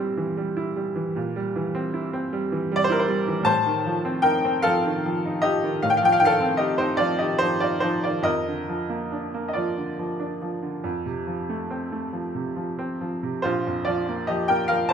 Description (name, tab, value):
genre	classical, romantic nocturne for solo piano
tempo	45-53 BPM (dotted quarters)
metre	12/8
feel	rubato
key	unclear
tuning	A4 = 439 Hz
part	bright baby grand piano	solo	0.0-14.9 s	Bb1 to A5	-22 LUFS	equal	none
room	moderate recital hall reverb, RT60 1.6 s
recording	minimal, uncompressed stereo recording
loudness	-22 LUFS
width	side -7 dB against mid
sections	0.0-14.9 A section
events	none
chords	0.0 C7/Bb; 3.5 F7/A; 8.3 Bb/F; 10.8 F; 13.4 Bb5